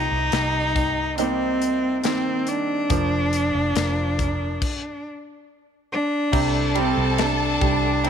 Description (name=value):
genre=pop ballad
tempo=70 BPM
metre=4/4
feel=straight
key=unclear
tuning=A4 = 438 Hz
part: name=rich cello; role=melody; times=0.0-8.1 s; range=C4 to E4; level=-23 LUFS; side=left 1 dB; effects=none
part: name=bright concert grand piano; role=accompaniment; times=0.0-8.1 s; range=C3 to Eb4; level=-27 LUFS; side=right 13 dB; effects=none
part: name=flamenco guitar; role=arpeggios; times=0.0-8.1 s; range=C3 to Bb4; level=-33 LUFS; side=left 11 dB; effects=none
part: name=vintage muted fingered electric bass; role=bass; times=0.0-8.1 s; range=F1 to C2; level=-27 LUFS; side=equal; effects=none
part: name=modern studio drum kit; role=drums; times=0.3-8.1 s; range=crash cymbal, hi-hat, kick drum, ride cymbal, snare drum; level=-27 LUFS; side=left 3 dB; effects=none
part: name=warm studio violin section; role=second line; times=6.3-8.1 s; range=A4 to A5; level=-26 LUFS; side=left 2 dB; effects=none
room=light reverb, studio reverb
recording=1960s-style stereo with parts hard left and right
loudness=-20 LUFS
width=side -8 dB against mid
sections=0.0-6.3 A section; 6.3-8.1 B section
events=stop 4.6-6.3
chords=0.0 Cm7; 2.9 Bb/F; 4.6 N.C.; 6.3 C